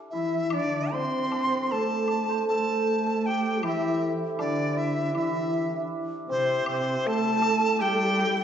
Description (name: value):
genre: chinese traditional, Chinese chamber ensemble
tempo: 79 BPM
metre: 4/4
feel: rubato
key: D shang mode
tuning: A4 = 440 Hz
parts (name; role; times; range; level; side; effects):
- hammered dulcimer; second line; 0.0-8.4 s; C4 to C5; -30 LUFS; right 2 dB; none
- dizi; melody; 0.1-8.4 s; C5 to C6; -28 LUFS; left 1 dB; none
- dark cello; second line; 0.1-8.4 s; C3 to C4; -31 LUFS; right 3 dB; none
- mellow hollow low xiao; second line; 0.1-8.4 s; D4 to C5; -31 LUFS; left 3 dB; none
- woodblock; percussion; 0.5-8.4 s; none; -41 LUFS; left 2 dB; none
room: wet recital hall reverb, RT60 1.9 s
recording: recorded in a church or concert hall, nothing above 7.9 kHz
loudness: -24 LUFS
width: side -8 dB against mid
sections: 0.0-8.4 A section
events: none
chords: none